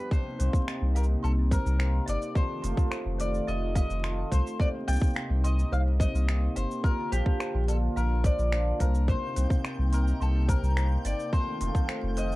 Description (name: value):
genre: folktronica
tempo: 107 BPM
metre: 4/4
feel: straight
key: C dorian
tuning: A4 = 444 Hz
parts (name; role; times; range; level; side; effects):
- mandolin; melody; 0.0-12.4 s; G4 to G5; -35 LUFS; left 2 dB; none
- warm analog pad; sustained chords; 0.0-12.4 s; C3 to G4; -37 LUFS; equal; chorus, vintage 12-bit sampler grit
- cimbalom; arpeggios; 0.0-12.4 s; F2 to G4; -37 LUFS; right 1 dB; none
- toy piano; second line; 0.1-12.3 s; C5 to C6; -41 LUFS; equal; tape echo
- electronic kick drum; drums; 0.1-11.9 s; none; -25 LUFS; equal; none
- organic electronic drum kit; drums; 0.1-12.4 s; finger snaps, hi-hat, shaker; -38 LUFS; equal; none
- warm sub bass; bass; 0.4-12.4 s; F1 to C2; -26 LUFS; equal; none
- twinkling granular texture; texture; 9.3-12.4 s; G5; -46 LUFS; right 3 dB; built-in reverb
room: light reverb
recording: dark, warm production, vinyl crackle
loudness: -25 LUFS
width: side -19 dB against mid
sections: 0.1-12.4 A section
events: none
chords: 0.1 Cm7; 2.4 F7; 4.6 Cm7; 6.8 Bb; 9.1 Cm7; 11.3 F7